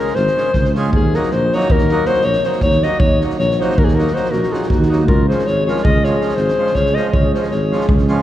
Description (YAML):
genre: balkan folk, Balkan wedding band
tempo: 319 BPM (eighths)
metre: 11/8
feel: straight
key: unclear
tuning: A4 = 441 Hz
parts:
  - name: warm alto saxophone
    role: melody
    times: 0.0-7.9 s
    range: Gb4 to Eb5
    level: -18 LUFS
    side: left 2 dB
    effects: none
  - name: accordion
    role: accompaniment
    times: 0.0-8.2 s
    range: F3 to Ab4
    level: -24 LUFS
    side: right 2 dB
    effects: none
  - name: loose indie drum kit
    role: percussion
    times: 0.1-8.1 s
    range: kick drum, snare drum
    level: -19 LUFS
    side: equal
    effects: none
  - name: mellow tuba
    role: bass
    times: 0.2-8.2 s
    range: Ab1 to Eb2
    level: -18 LUFS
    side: right 1 dB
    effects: none
  - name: mellow clarinet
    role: second line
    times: 4.3-7.9 s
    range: Eb4 to C5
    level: -22 LUFS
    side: equal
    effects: tape echo
room: wet concert hall reverb, RT60 1.9 s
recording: heard from further back in the room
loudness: -13 LUFS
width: side -13 dB against mid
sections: 0.0-8.2 A section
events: none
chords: 0.0 Db; 0.9 Ebm; 5.1 Db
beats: 0.17 0.36 0.55 0.74 | 0.93 1.12 1.30 1.49 1.68 1.87 2.06 2.25 2.44 2.63 2.82 | 3.00 3.19 3.38 3.57 3.76 3.95 4.13 4.32 4.51 4.70 4.89 | 5.08 5.26 5.45 5.64 5.82 6.01 6.20 6.38 6.57 6.76 6.94 | 7.13 7.32 7.50 7.69 7.87 8.06